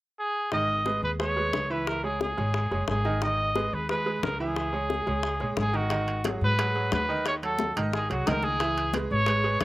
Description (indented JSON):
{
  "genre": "latin, salsa",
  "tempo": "178 BPM",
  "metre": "4/4",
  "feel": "straight",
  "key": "G# minor",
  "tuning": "A4 = 441 Hz",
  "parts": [
    { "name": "clear trumpet", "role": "melody", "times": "0.2-9.6 s", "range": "F#4 to D#5", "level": "-28 LUFS", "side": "right 1 dB", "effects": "slapback echo" },
    { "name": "bright concert grand piano", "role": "accompaniment", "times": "0.5-9.6 s", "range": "D#3 to E5", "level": "-31 LUFS", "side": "right 3 dB", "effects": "none" },
    { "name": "upright bass", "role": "bass", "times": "0.5-9.6 s", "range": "F#1 to G#2", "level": "-30 LUFS", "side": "equal", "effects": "none" },
    { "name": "bongos", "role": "percussion", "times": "0.5-9.6 s", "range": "none", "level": "-34 LUFS", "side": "left 5 dB", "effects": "none" },
    { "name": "congas", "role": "percussion", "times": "5.9-9.6 s", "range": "none", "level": "-37 LUFS", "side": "left 4 dB", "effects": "none" },
    { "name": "timbales", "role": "percussion", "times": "5.9-9.6 s", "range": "none", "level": "-37 LUFS", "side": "right 3 dB", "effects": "none" }
  ],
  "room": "little or no reverb",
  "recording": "recorded outdoors, with no room sound",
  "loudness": "-25 LUFS",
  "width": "side -17 dB against mid",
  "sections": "0.5-5.9 A section; 5.9-9.6 B section",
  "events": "none",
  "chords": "0.0 N.C.; 0.5 G#m; 1.9 C#m; 3.2 G#m; 4.6 C#m; 5.9 G#m7; 7.3 D#dim; 7.9 G#7; 8.6 C#m7"
}